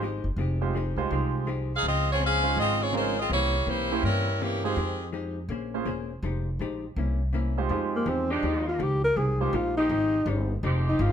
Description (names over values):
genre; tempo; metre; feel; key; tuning
jazz; 164 BPM; 4/4; swing 64% on 8ths; F minor; A4 = 440 Hz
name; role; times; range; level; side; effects
hollow-body jazz guitar; accompaniment; 0.0-11.1 s; C3 to C5; -34 LUFS; left 5 dB; none
upright bass; bass; 0.0-11.1 s; E1 to G2; -28 LUFS; equal; none
clear grand piano; accompaniment; 0.6-9.5 s; Ab3 to C5; -31 LUFS; right 7 dB; none
edgy saxophone section; melody; 1.7-5.1 s; Eb3 to F5; -26 LUFS; equal; none
dark alto saxophone; melody; 8.0-11.1 s; Bb3 to Bb4; -26 LUFS; left 1 dB; none
warm saxophone section; sustained chords; 8.3-11.1 s; F3 to G4; -34 LUFS; right 2 dB; none
room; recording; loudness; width
light reverb; none; -24 LUFS; side -8 dB against mid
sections
0.0-7.7 A section; 7.7-11.1 B section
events
alto saxophone solo 7.7-11.1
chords
0.0 Fm9; 1.8 Dbmaj7; 3.3 C7b9; 4.8 Fm9; 5.5 Bbm9; 6.2 Fm9; 7.0 C7b9; 7.7 Fm9